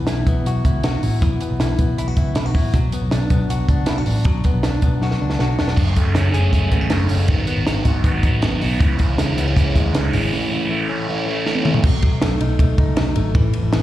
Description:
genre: jangly indie pop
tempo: 158 BPM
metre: 4/4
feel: straight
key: unclear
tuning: A4 = 440 Hz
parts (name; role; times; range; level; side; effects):
- direct-recorded clean electric guitar; arpeggios; 0.0-13.8 s; D#3 to G#4; -24 LUFS; left 4 dB; tape echo, slapback echo
- vintage muted picked electric bass; bass; 0.0-13.8 s; E1 to D#2; -20 LUFS; equal; none
- compact cocktail drum kit; drums; 0.1-13.8 s; crash cymbal, hi-hat, kick drum, ride cymbal, snare drum, toms; -19 LUFS; equal; none
- crunchy overdriven guitar; accompaniment; 5.8-11.8 s; G#2 to G#4; -22 LUFS; right 4 dB; phaser, slapback echo
room: light reverb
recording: live gig heard through the venue's PA, recital hall reverb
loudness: -16 LUFS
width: side -14 dB against mid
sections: 0.0-5.8 A section; 5.8-11.8 B section; 11.8-13.8 C section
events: drum fill 5.0-5.8, 11.5-11.8; break 10.3-11.8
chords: 0.0 Bsus4; 2.7 E7sus2 (rootless); 5.8 F#madd9; 7.3 G#m7; 8.8 C#m; 10.3 A; 11.8 B7

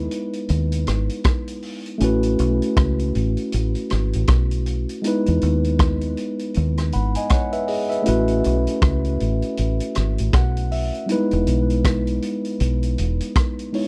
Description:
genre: lovers rock reggae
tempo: 79 BPM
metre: 4/4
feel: swing 59% on 16ths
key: E major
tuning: A4 = 439 Hz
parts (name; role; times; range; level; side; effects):
- mellow tine electric piano; accompaniment; 0.0-13.9 s; G3 to B5; -25 LUFS; equal; tape echo
- deep dub fingered electric bass; bass; 0.0-13.2 s; E1 to E2; -23 LUFS; equal; none
- vintage drum kit; drums; 0.1-13.9 s; hi-hat, kick drum, rim click; -25 LUFS; equal; none
room: little or no reverb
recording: dry, close 1970s-style studio recording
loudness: -21 LUFS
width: mono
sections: 0.0-13.9 A section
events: tine electric piano fill 10.0-11.1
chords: 0.0 Emaj7; 2.0 A69; 5.0 Emaj7; 8.1 A69; 11.1 Emaj7

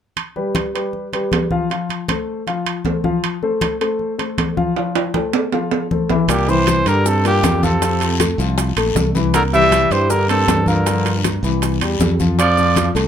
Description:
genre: Afro-Cuban jazz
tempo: 157 BPM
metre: 4/4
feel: straight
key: C mixolydian from 6.3 s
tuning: A4 = 442 Hz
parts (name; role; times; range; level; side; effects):
- congas; percussion; 0.2-13.0 s; none; -22 LUFS; left 2 dB; none
- timbales; percussion; 0.2-13.1 s; none; -23 LUFS; right 7 dB; none
- warm baby grand piano; accompaniment; 0.4-13.1 s; E3 to F5; -21 LUFS; left 4 dB; none
- mellow trumpet; melody; 6.3-12.9 s; G4 to E5; -18 LUFS; equal; plate reverb
- breathy tenor saxophone; second line; 6.3-12.9 s; Bb2 to G3; -22 LUFS; right 6 dB; none
- modern bright fingered electric bass; bass; 6.3-13.1 s; Bb1 to G2; -19 LUFS; right 1 dB; none
- bongos; percussion; 6.3-13.1 s; none; -26 LUFS; left 7 dB; none
- guiro; percussion; 6.3-13.1 s; none; -31 LUFS; left 7 dB; none
- maracas; percussion; 6.3-13.1 s; none; -30 LUFS; right 10 dB; none
room: moderate club reverb, RT60 0.5 s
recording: none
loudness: -15 LUFS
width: side -8 dB against mid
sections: 0.2-6.3 A section; 6.3-13.1 B section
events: drum fill 4.8-6.3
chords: 0.2 G7; 1.7 F; 6.3 C7; 7.8 F; 9.3 C7; 11.6 C; 12.4 F

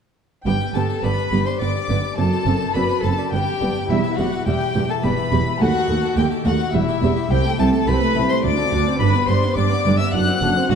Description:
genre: classical, baroque-style concerto movement with solo episodes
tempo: 105 BPM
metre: 3/4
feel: straight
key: G major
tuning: A4 = 439 Hz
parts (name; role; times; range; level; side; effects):
- dark chamber violin section; melody; 0.5-10.8 s; E5 to F#6; -29 LUFS; left 6 dB; none
- rich violin; melody; 0.5-10.8 s; E5 to F#6; -27 LUFS; left 3 dB; none
- rich chamber violin section; second line; 0.5-10.8 s; E4 to F#5; -25 LUFS; left 6 dB; none
- dark studio viola section; accompaniment; 0.5-10.8 s; G3 to D4; -25 LUFS; right 1 dB; none
- harpsichord; accompaniment; 0.5-10.8 s; C2 to E5; -28 LUFS; left 1 dB; none
- dark symphonic cello section; bass; 0.5-10.8 s; C2 to G2; -23 LUFS; right 3 dB; none
- warm studio double bass section; bass; 0.5-10.8 s; E1 to D#2; -23 LUFS; right 3 dB; none
room: moderate concert hall reverb, RT60 2.3 s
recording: dark, warm production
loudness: -17 LUFS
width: side -7 dB against mid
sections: 0.5-10.8 A section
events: none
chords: 0.5 G; 2.2 D7/F#; 3.3 G; 3.9 Em; 5.6 B7/D#; 6.7 Em; 7.3 Am/C; 8.4 D7; 9.0 G; 10.1 D7/F#

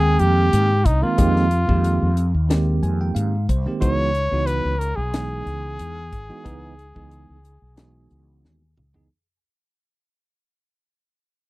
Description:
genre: electric jazz fusion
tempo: 91 BPM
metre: 4/4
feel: straight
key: unclear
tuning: A4 = 440 Hz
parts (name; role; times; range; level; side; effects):
- clear trumpet; melody; 0.0-8.4 s; Eb4 to Db5; -23 LUFS; equal; none
- bell-like tine electric piano; accompaniment; 0.0-9.1 s; Eb3 to Ab5; -25 LUFS; right 3 dB; fast stereo tremolo
- mellow fretless electric bass; bass; 0.0-9.1 s; Ab1 to Ab2; -20 LUFS; equal; lush chorus
- tight funk drum kit; drums; 0.2-9.1 s; hi-hat, kick drum, snare drum, toms; -22 LUFS; left 1 dB; none
room: little or no reverb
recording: dry, close 1970s-style studio recording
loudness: -17 LUFS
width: side -20 dB against mid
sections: 0.0-9.1 A section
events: fade-out 0.0-9.1; tine electric piano fill 2.5-3.8; drum fill 8.4-9.1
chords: 0.0 Fm11; 3.8 Dbm11

